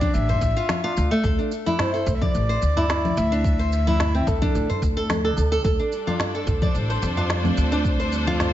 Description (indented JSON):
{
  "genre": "organic downtempo",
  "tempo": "109 BPM",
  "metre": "4/4",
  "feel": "swing 55% on 16ths",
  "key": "unclear",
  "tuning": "A4 = 441 Hz",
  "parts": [
    { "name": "breathy flute-like synth lead", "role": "melody", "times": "0.0-4.8 s", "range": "A4 to E5", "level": "-28 LUFS", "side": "left 1 dB", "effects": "chorus, ping-pong delay" },
    { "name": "flamenco guitar", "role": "arpeggios", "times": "0.0-8.5 s", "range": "A3 to D5", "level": "-25 LUFS", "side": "right 1 dB", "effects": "ping-pong delay" },
    { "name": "electronic congas, shaker and snare drum", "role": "drums", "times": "0.0-8.5 s", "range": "none", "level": "-28 LUFS", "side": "left 2 dB", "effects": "studio reverb" },
    { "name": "electronic kick drum", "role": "drums", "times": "0.0-8.0 s", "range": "none", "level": "-24 LUFS", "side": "equal", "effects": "studio reverb" },
    { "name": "upright bass", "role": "bass", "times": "0.1-8.5 s", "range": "A1 to F2", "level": "-23 LUFS", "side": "equal", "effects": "sidechain pumping" },
    { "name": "tabla", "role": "percussion", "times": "0.3-8.5 s", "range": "none", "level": "-32 LUFS", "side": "equal", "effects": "none" },
    { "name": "clear symphonic string section", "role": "sustained chords", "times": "5.6-8.5 s", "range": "G3 to C5", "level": "-29 LUFS", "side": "left 2 dB", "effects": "sidechain pumping" },
    { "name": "muted felt-like synth keys", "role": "accompaniment", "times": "7.4-8.5 s", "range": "A3 to F4", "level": "-28 LUFS", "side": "right 5 dB", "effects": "chorus, sidechain pumping, ping-pong delay" }
  ],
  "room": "light reverb, small room ambience",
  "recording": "nothing above 7.7 kHz",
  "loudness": "-20 LUFS",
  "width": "side -12 dB against mid",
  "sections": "0.0-8.5 A section",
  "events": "none",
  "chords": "0.0 Dm; 1.2 N.C.; 5.6 G7sus4",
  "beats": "0.14 0.69 | 1.24 1.79 2.34 2.89 | 3.44 4.00 4.54 5.10 | 5.65 6.20 6.75 7.30 | 7.85 8.40"
}